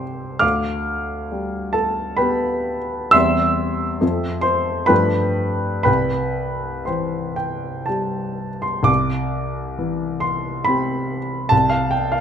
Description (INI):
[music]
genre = classical, romantic nocturne for solo piano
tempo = 58-72 BPM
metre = 3/4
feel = rubato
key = C major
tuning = A4 = 440 Hz
[part]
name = warm grand piano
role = solo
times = 0.0-12.2 s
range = C2 to F6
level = -18 LUFS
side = equal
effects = none
[sound]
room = moderate recital hall reverb, RT60 1.4 s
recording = close, detailed microphones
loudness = -18 LUFS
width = side -8 dB against mid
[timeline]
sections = 0.0-8.9 A section; 8.9-12.2 A section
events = none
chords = 0.4 G7/D; 3.1 C/E; 4.0 F; 4.9 G9; 5.9 C; 11.5 Dm7/C (rootless)